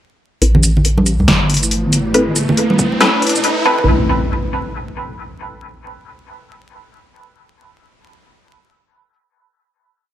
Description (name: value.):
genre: deep dubstep.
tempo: 139 BPM.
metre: 4/4.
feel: swing 62% on 16ths, half-time.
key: A minor.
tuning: A4 = 442 Hz.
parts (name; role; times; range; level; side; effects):
dark analog pad; sustained chords; 1.5-3.9 s; A3 to B4; -20 LUFS; equal; chorus.
filtered dub chord stab; stabs; 0.4-3.8 s; C4 to B4; -18 LUFS; left 1 dB; phaser, dub echo.
deep soft wobble bass; bass; 0.4-3.9 s; E1 to C2; -16 LUFS; equal; chorus.
deep house drum kit; drums; 0.4-3.5 s; hi-hat, shaker, snare drum; -16 LUFS; equal; overdrive.
riser and impact; sound effects; 1.6-5.4 s; none; -21 LUFS; equal; none.
congas; percussion; 0.5-3.9 s; none; -17 LUFS; right 1 dB; none.
electronic kick drum; drums; 2.8-3.8 s; none; -20 LUFS; equal; overdrive.
room: moderate spring reverb, RT60 1.3 s, digital ambience.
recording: vinyl crackle, high-pass filter.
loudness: -12 LUFS.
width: side -12 dB against mid.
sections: 0.4-3.9 build; 3.9-5.6 final hit.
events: build-up 0.4-3.9; filter sweep on synth stab 0.4-3.9; filter sweep on analog synth pad 0.4-3.9; filter sweep 0.4-3.9; riser 1.6-3.9.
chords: 0.4 Amadd9; 3.9 N.C..